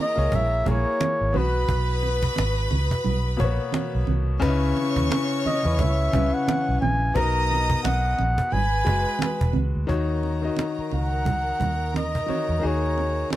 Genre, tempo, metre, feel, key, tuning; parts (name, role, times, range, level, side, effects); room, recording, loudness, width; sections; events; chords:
lush 1970s-style soul; 88 BPM; 4/4; swing 58% on 16ths; G# minor; A4 = 440 Hz
breathy flugelhorn; melody; 0.0-13.4 s; B4 to A#5; -26 LUFS; equal
clear studio violin section; second line; 0.0-13.4 s; A#4 to D#6; -32 LUFS; equal
clear baby grand piano; accompaniment; 0.0-13.4 s; B2 to D#5; -28 LUFS; left 4 dB
vintage muted fingered electric bass; bass; 0.2-13.2 s; E1 to E2; -24 LUFS; equal
cajon; drums; 0.2-13.4 s; -27 LUFS; right 1 dB
congas; percussion; 0.3-13.4 s; -30 LUFS; right 7 dB
little or no reverb; dry, close 1970s-style studio recording; -21 LUFS; side -14 dB against mid
0.0-9.9 A section; 9.9-13.4 B section
0.0 A#m7b5; 1.3 G#m7 (rootless); 4.4 C#m7; 7.2 Bmaj7; 8.5 G#m7; 9.9 D#m7